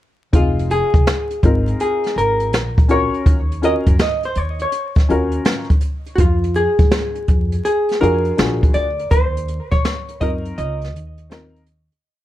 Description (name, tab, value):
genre	hip hop, jazz-hop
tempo	82 BPM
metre	4/4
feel	swing 66% on 16ths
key	Eb dorian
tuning	A4 = 439 Hz
part	warm upright piano	accompaniment	0.3-11.6 s	C4 to Bb4	-21 LUFS	left 3 dB	none
part	upright bass	bass	0.3-11.9 s	F1 to Bb2	-22 LUFS	equal	none
part	jazz brush drum kit	drums	0.3-12.0 s	hi-hat, kick drum, snare drum	-16 LUFS	equal	none
part	vintage hollow-body jazz guitar	melody	0.4-11.6 s	F4 to Eb5	-20 LUFS	equal	analog delay
room	light reverb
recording	dark, warm production, vinyl crackle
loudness	-15 LUFS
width	side -13 dB against mid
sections	0.3-12.0 head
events	fade-out 9.1-12.0; break 10.6-12.0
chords	0.3 Fm7; 2.5 Bb5; 3.3 Ebm9; 6.2 Fm; 8.4 Bb7b13; 9.1 Ebmadd9; 10.6 Dbmaj13